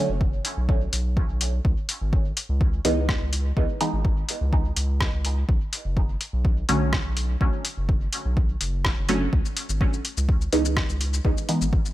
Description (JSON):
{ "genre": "dub techno", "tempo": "125 BPM", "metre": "4/4", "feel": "straight", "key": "C# minor", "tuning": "A4 = 438 Hz", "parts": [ { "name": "filtered dub chord stab", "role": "stabs", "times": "0.0-11.6 s", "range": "D3 to D#4", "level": "-27 LUFS", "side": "right 1 dB", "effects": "chorus, phaser, dub echo" }, { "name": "round analog bass", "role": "bass", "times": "0.1-11.9 s", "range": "F#1 to C#2", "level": "-25 LUFS", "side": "equal", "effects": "sidechain pumping" }, { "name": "electronic kick drum", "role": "drums", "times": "0.2-11.8 s", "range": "none", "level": "-23 LUFS", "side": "equal", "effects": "none" }, { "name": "lo-fi sampler-style drum kit", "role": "drums", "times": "0.4-11.9 s", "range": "cabasa, hi-hat, rim click", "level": "-28 LUFS", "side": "left 1 dB", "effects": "overdrive" } ], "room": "little or no reverb", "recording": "none", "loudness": "-21 LUFS", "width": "side -15 dB against mid", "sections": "0.0-9.3 A section; 9.3-11.9 A section", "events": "filter sweep on synth stab 9.3-11.9", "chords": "0.0 Bm9; 1.6 C#m9; 5.5 Bm9; 9.3 C#m9" }